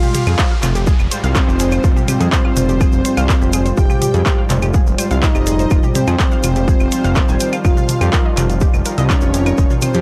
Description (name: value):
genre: melodic techno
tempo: 124 BPM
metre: 4/4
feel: straight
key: F minor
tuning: A4 = 443 Hz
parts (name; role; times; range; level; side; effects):
- expressive synth lead; melody; 0.0-10.0 s; C4 to G4; -24 LUFS; equal; chorus, cassette tape, sidechain pumping, analog delay
- soft supersaw; second line; 0.0-10.0 s; C5 to G5; -34 LUFS; equal; sidechain pumping, analog delay
- sweeping resonant pad; sustained chords; 0.0-10.0 s; Eb3 to G3; -32 LUFS; equal; none
- warbly dusty pluck; arpeggios; 0.0-10.0 s; Eb4 to Ab5; -30 LUFS; equal; chorus, sidechain pumping, analog delay
- analog synth brass; stabs; 0.0-10.0 s; Ab2 to F4; -28 LUFS; equal; chorus, sidechain pumping, analog delay
- house drum kit; drums; 0.0-10.0 s; claves, handclaps, hi-hat, toms; -23 LUFS; equal; overdrive, sidechain pumping on hats, sidechain pumping on perc, sidechain pumping on toms
- egg shaker; percussion; 0.0-10.0 s; none; -33 LUFS; equal; none
- downlifter; sound effects; 0.0-3.8 s; none; -35 LUFS; equal; none
- granular cloud pad; texture; 1.2-10.0 s; Eb4 to G5; -36 LUFS; equal; none
- fat analog bass; bass; 0.3-10.0 s; Eb1 to F2; -20 LUFS; equal; sidechain pumping
- electronic kick drum; drums; 0.4-9.7 s; none; -17 LUFS; equal; overdrive
room: digital ambience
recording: dry, gritty hardware recording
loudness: -15 LUFS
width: mono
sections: 0.0-10.0 A section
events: none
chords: 0.0 Fmadd9; 7.6 Ebadd9/F